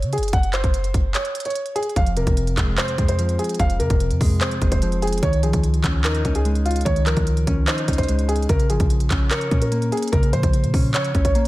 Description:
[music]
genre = hip hop, trap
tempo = 147 BPM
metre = 4/4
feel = half-time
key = F phrygian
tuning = A4 = 440 Hz
[part]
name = warm grand piano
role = melody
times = 0.0-11.5 s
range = F4 to Gb5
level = -25 LUFS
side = equal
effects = low-pass filter
[part]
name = clean 808-style bass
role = bass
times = 0.0-11.5 s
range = Eb1 to Db3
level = -22 LUFS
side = equal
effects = none
[part]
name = trap drum kit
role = drums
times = 0.0-11.5 s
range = handclaps, hi-hat, kick drum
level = -22 LUFS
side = equal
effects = none
[part]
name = mellow electric guitar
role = accompaniment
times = 2.0-11.5 s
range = F2 to Db5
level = -24 LUFS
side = left 1 dB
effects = low-pass filter
[sound]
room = digital ambience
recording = none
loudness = -18 LUFS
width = side -17 dB against mid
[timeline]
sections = 0.0-11.5 A section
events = break 1.1-2.0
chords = 0.0 Gb5; 2.0 Fm; 5.2 Dbadd9; 8.5 Bbm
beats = | 0.33 0.74 1.15 1.55 | 1.96 2.37 2.78 3.19 | 3.60 4.00 4.41 4.82 | 5.23 5.64 6.04 6.45 | 6.86 7.27 7.68 8.09 | 8.49 8.90 9.31 9.72 | 10.13 10.53 10.94 11.35

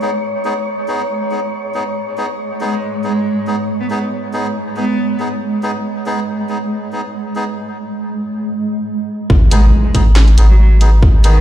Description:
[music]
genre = deep dubstep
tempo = 139 BPM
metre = 4/4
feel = swing 53% on 16ths, half-time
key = G# minor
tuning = A4 = 445 Hz
[part]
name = granular cloud pad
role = sustained chords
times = 0.0-11.4 s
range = G#3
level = -22 LUFS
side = right 3 dB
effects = built-in reverb
[part]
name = melodica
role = stabs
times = 0.0-11.4 s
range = B3 to G#4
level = -23 LUFS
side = left 1 dB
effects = dub echo
[part]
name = wind-like tuned noise texture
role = texture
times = 0.0-7.6 s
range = C#5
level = -24 LUFS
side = left 1 dB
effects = built-in reverb
[part]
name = rich cello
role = melody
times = 2.6-5.2, 9.5-11.4 s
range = D#3 to B3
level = -23 LUFS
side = equal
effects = dub echo
[part]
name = soft dub sub bass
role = bass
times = 9.3-11.4 s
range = G#1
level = -9 LUFS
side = equal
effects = none
[part]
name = electronic kick drum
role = drums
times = 9.3-11.1 s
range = none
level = -11 LUFS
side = equal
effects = overdrive
[part]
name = impact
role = sound effects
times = 9.3-11.0 s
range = none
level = -18 LUFS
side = equal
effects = none
[part]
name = garage drum kit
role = drums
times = 9.5-11.3 s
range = handclaps, hi-hat, snare drum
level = -22 LUFS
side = right 1 dB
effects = overdrive
[sound]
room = little or no reverb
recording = played on a big sound system in a bare room, stone room reverb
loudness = -13 LUFS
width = side -12 dB against mid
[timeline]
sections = 0.0-9.3 A section; 9.3-11.4 B section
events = drop 9.3-11.4; impact 9.3-11.0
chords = 0.0 G#m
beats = 0.23 | 0.67 1.10 1.53 1.96 | 2.39 2.82 3.26 3.69 | 4.12 4.55 4.98 5.41 | 5.84 6.28 6.71 7.14 | 7.57 8.00 8.44 8.87 | 9.30 9.73 10.16 10.59 | 11.03

